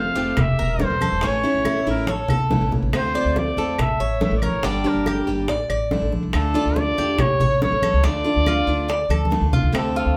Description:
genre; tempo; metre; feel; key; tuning
latin, Cuban son and guajira; 141 BPM; 4/4; straight; D minor; A4 = 440 Hz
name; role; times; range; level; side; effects
warm trumpet; melody; 0.0-10.2 s; A4 to F5; -26 LUFS; equal; none
picked steel-string acoustic guitar; accompaniment; 0.0-10.2 s; D3 to G4; -27 LUFS; equal; none
Cuban tres; arpeggios; 0.0-10.2 s; C#4 to D5; -29 LUFS; equal; none
upright bass; bass; 0.0-10.2 s; E1 to E2; -27 LUFS; equal; none
bongos; percussion; 0.2-10.0 s; none; -32 LUFS; equal; none
claves; percussion; 0.4-10.0 s; none; -37 LUFS; equal; none
congas; percussion; 0.4-10.2 s; none; -27 LUFS; equal; none
room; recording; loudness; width
wet small room reverb, RT60 0.5 s; heard from further back in the room; -21 LUFS; mono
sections
0.0-9.7 A section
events
drum fill 2.1-2.9, 9.1-9.7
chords
0.4 Edim; 1.2 A; 2.9 Dm7; 3.8 A; 4.6 Gm; 5.5 Asus4; 6.3 Dm; 7.2 A7; 8.0 Dm

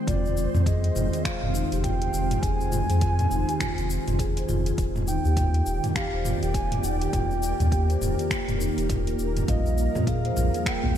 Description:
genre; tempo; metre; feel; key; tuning
organic downtempo; 102 BPM; 4/4; swing 60% on 16ths; F dorian; A4 = 440 Hz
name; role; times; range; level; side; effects
ethereal airy pad; sustained chords; 0.0-11.0 s; Eb3 to G5; -31 LUFS; right 1 dB; ensemble chorus, built-in reverb, sidechain pumping, shimmer reverb
mellow bass bansuri; melody; 0.1-11.0 s; D5 to Ab5; -32 LUFS; right 1 dB; analog delay, shimmer reverb
marimba with soft mallets; arpeggios; 0.1-10.7 s; Eb4 to C5; -32 LUFS; left 1 dB; analog delay, shimmer reverb
warm sub bass; bass; 0.1-11.0 s; Eb1 to Bb2; -26 LUFS; equal; sidechain pumping
deep house drum kit; drums; 0.1-10.9 s; finger snaps, hi-hat, shaker, toms; -29 LUFS; right 1 dB; overdrive
electronic kick drum; drums; 0.1-10.8 s; none; -30 LUFS; equal; overdrive
bronze singing bowl; texture; 9.5-11.0 s; G3 to F5; -38 LUFS; left 4 dB; none
djembe; percussion; 10.0-10.9 s; none; -36 LUFS; right 1 dB; none
room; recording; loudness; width
light reverb; none; -22 LUFS; side -10 dB against mid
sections
0.1-11.0 A section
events
none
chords
0.1 Fm7; 4.8 Ebmaj7; 9.5 Bb7sus4

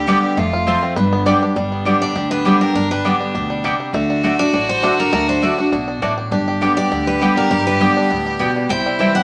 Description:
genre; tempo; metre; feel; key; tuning
bluegrass; 202 BPM; 4/4; straight; G major; A4 = 440 Hz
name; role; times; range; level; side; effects
bluegrass banjo; melody; 0.0-9.2 s; G3 to D5; -25 LUFS; equal; none
clear fiddle; second line; 0.0-9.2 s; D4 to G4; -25 LUFS; equal; none
picked steel-string acoustic guitar; accompaniment; 0.0-9.2 s; F2 to G4; -21 LUFS; equal; none
upright bass; bass; 0.0-9.1 s; F1 to D2; -29 LUFS; equal; none
mandolin; stabs; 0.1-9.1 s; A3 to A5; -23 LUFS; equal; none
picked steel-string acoustic guitar; melody; 2.0-9.2 s; Bb4 to G5; -24 LUFS; equal; none
room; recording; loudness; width
wet studio reverb, RT60 0.8 s; none; -17 LUFS; mono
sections
0.0-1.6 A section; 1.6-9.2 B section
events
five-string banjo solo 0.0-1.6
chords
0.4 F; 1.0 G; 3.9 D; 6.3 G; 8.7 C

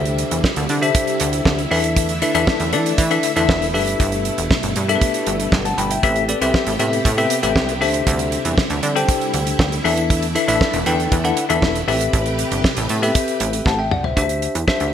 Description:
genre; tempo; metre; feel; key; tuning
early-eighties boogie funk; 118 BPM; 4/4; straight; A minor; A4 = 439 Hz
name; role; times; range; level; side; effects
bell-like tine electric piano; accompaniment; 0.0-14.9 s; B3 to B5; -20 LUFS; left 4 dB; fast stereo tremolo
string machine, violins; sustained chords; 0.0-14.1 s; B2 to B4; -26 LUFS; right 1 dB; ensemble chorus
plucky analog bass; bass; 0.0-14.9 s; E1 to E3; -22 LUFS; right 1 dB; none
damped 70s drum kit; drums; 0.1-14.9 s; hi-hat, kick drum, snare drum, toms; -21 LUFS; right 2 dB; gated reverb
room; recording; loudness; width
light reverb, small room ambience; bright 1980s-style digital production; -16 LUFS; side -9 dB against mid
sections
0.0-14.2 A section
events
drum fill 13.7-14.2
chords
0.0 D9sus4; 1.7 E7sus4; 3.7 G69; 6.0 Am9; 7.8 D9sus4; 9.8 E7sus4; 11.9 Am9; 14.2 D9sus4

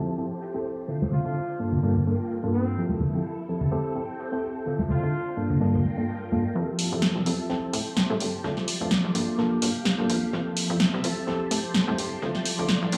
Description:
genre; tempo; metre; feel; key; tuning
filtered disco house; 127 BPM; 4/4; swing 56% on 16ths; G dorian; A4 = 440 Hz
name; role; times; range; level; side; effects
reed electric piano; accompaniment; 0.0-13.0 s; G2 to A4; -30 LUFS; equal; fast tremolo, phaser, vintage 12-bit sampler grit, low-pass filter, dub echo
phased string machine; sustained chords; 0.0-13.0 s; F3 to C6; -36 LUFS; equal; ensemble chorus, phaser, low-pass filter
tube shaker and congas; percussion; 0.2-6.5 s; none; -30 LUFS; equal; low-pass filter on perc
clear horn section; melody; 1.1-5.4 s; C4 to F4; -37 LUFS; equal; vintage 12-bit sampler grit, low-pass filter, dub echo
plucky analog bass; bass; 6.6-13.0 s; G1 to A2; -32 LUFS; equal; high-pass filter, low-pass filter
punchy analog drum machine; drums; 6.8-13.0 s; hi-hat, snare drum; -29 LUFS; equal; low-pass filter on hats, low-pass filter on snare, low-pass filter on room, dub echo
room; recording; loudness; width
moderate spring reverb, RT60 1.5 s, digital ambience; echo-heavy mix, small room reverb; -26 LUFS; mono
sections
0.0-6.6 A section; 6.6-13.0 B section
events
filter sweep 0.0-6.6, 6.6-13.0; build-up 6.6-13.0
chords
0.0 Am7; 0.9 Dm7; 1.6 Gm7; 2.8 Fmaj7; 3.7 Am7; 4.7 Dm7; 5.4 Gm7; 6.6 Fmaj7; 7.5 Am7; 8.4 Dm7; 9.2 Gm7; 10.3 Fmaj7; 11.3 Am7; 12.2 Dm7

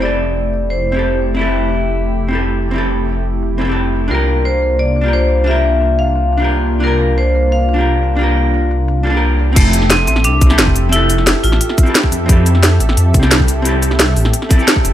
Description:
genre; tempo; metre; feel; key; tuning
liquid drum and bass; 176 BPM; 4/4; straight; F major; A4 = 440 Hz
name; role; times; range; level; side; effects
vibraphone with hard mallets; melody; 0.0-1.2, 4.1-11.9 s; A3 to F5; -18 LUFS; left 1 dB; tape echo
vintage hollow-body jazz guitar; accompaniment; 0.0-14.9 s; C4 to E5; -19 LUFS; equal; vintage 12-bit sampler grit, digital delay
warm analog pad; sustained chords; 0.0-14.9 s; A3 to E5; -23 LUFS; left 1 dB; chorus
dark detuned saw bass; bass; 0.0-14.9 s; F1 to F2; -15 LUFS; equal; none
drum and bass drum kit; drums; 0.0-14.9 s; cabasa, crash cymbal, hi-hat, snare drum; -15 LUFS; equal; low-pass filter on hats, low-pass filter on snare, low-pass filter on perc, low-pass filter on toms, low-pass filter on cymbals
electronic kick drum; drums; 9.6-14.8 s; none; -12 LUFS; equal; none
room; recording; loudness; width
light reverb, digital ambience; none; -11 LUFS; side -12 dB against mid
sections
0.0-9.6 A section; 9.6-14.9 B section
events
drop 9.6-14.9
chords
0.0 Fmaj9; 4.1 C9sus4; 9.6 Fmaj9

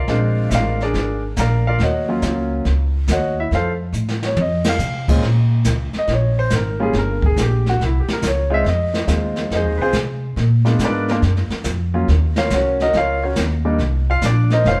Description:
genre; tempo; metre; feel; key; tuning
jazz piano trio; 140 BPM; 4/4; swing 66% on 8ths; Bb minor; A4 = 439 Hz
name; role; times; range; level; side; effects
warm concert grand piano; melody; 0.0-14.8 s; Bb2 to Bb5; -22 LUFS; equal; none
upright bass; bass; 0.0-14.8 s; F1 to C3; -21 LUFS; equal; none
jazz brush drum kit; drums; 0.1-14.8 s; brushed snare drum, crash cymbal, hi-hat, kick drum, ride cymbal, snare drum, toms; -26 LUFS; equal; none
room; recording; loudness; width
moderate stone room reverb, RT60 1.2 s; band playing live in one room; -18 LUFS; mono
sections
0.0-5.2 A section; 5.2-14.8 B section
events
drum fill 3.9-4.8; band accent 4.6; grand piano solo 5.2-14.8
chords
0.1 Bb7; 1.8 Ebm7; 3.5 F; 5.2 Bbm7; 6.9 Gm; 7.8 C(b9); 8.7 Fm7; 10.4 Bb7b9; 12.1 Ebm9; 13.8 Cm7

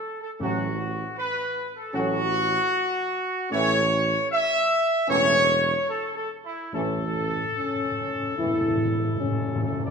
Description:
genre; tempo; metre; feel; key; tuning
classical; 70-78 BPM; 4/4; straight; A major; A4 = 440 Hz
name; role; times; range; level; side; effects
dark trumpet section; melody; 0.0-9.9 s; E4 to E5; -24 LUFS; equal; none
clear trombone section; sustained chords; 0.4-8.7 s; A2 to F#3; -33 LUFS; right 4 dB; none
warm French horn section; sustained chords; 0.4-9.9 s; A3 to E4; -29 LUFS; left 2 dB; none
mellow tuba; bass; 0.4-9.1 s; E1 to A1; -31 LUFS; right 3 dB; none
timpani; percussion; 0.4-1.5, 6.7-9.9 s; A2; -31 LUFS; left 1 dB; none
room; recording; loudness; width
moderate scoring stage reverb, RT60 1.7 s; none; -22 LUFS; side -5 dB against mid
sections
0.0-9.9 A section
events
timpani fill 6.7-9.9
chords
0.4 F#m/A; 3.5 A

